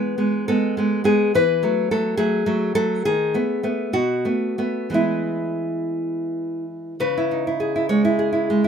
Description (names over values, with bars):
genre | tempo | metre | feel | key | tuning
romantic piece for solo classical guitar | 55-72 BPM (dotted quarters) | 6/8 | rubato | E major | A4 = 441 Hz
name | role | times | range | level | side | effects
nylon-string guitar | solo | 0.0-8.7 s | B2 to C#5 | -19 LUFS | equal | none
room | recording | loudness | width
light reverb | minimal, uncompressed stereo recording | -19 LUFS | side -7 dB against mid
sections
0.0-7.0 A section; 7.0-8.7 B section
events
none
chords
0.0 E (rootless); 1.3 F#m7/E; 3.1 B7/D#; 4.0 B5; 4.9 E; 7.0 C#m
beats
0.48 | 1.34 2.20 | 3.06 3.95 | 4.93 5.96 | 7.00 7.93